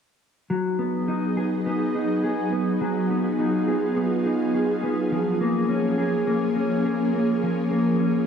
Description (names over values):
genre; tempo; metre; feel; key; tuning
dream pop; 104 BPM; 4/4; straight; G# dorian; A4 = 439 Hz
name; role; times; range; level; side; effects
ethereal airy pad; sustained chords; 0.7-8.3 s; E#3 to G#4; -26 LUFS; equal; ensemble chorus, built-in reverb
mellow electric guitar; arpeggios; 0.5-8.3 s; E#3 to G#4; -23 LUFS; equal; lush chorus, tape echo
room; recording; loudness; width
wet plate reverb, RT60 3.1 s; echo-heavy mix; -21 LUFS; side -7 dB against mid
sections
0.5-8.3 A section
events
none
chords
0.5 G#m7; 5.1 A#m7